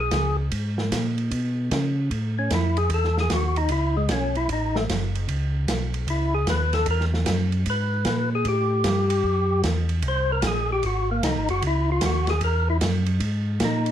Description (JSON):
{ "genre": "soul jazz organ trio", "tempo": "151 BPM", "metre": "4/4", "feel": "swing 65% on 8ths", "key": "C# dorian", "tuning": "A4 = 440 Hz", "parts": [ { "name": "percussive tonewheel organ", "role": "melody", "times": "0.0-13.9 s", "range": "G#3 to B#4", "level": "-24 LUFS", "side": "left 1 dB", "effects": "slow rotary speaker, overdrive" }, { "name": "mellow tonewheel organ", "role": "bass", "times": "0.0-13.9 s", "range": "F#1 to C#3", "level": "-24 LUFS", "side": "equal", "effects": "slow rotary speaker" }, { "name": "open jazz drum kit", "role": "drums", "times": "0.1-13.9 s", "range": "hi-hat, kick drum, ride cymbal, snare drum", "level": "-29 LUFS", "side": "right 2 dB", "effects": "none" } ], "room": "light reverb", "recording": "none", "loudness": "-21 LUFS", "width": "side -10 dB against mid", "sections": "0.0-13.9 A section", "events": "tonewheel organ solo 0.0-13.9", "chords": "0.0 C#7(no3); 2.1 F#m7; 5.3 C#m7; 8.5 A5; 10.0 G#7; 11.6 C#m; 13.2 G#5" }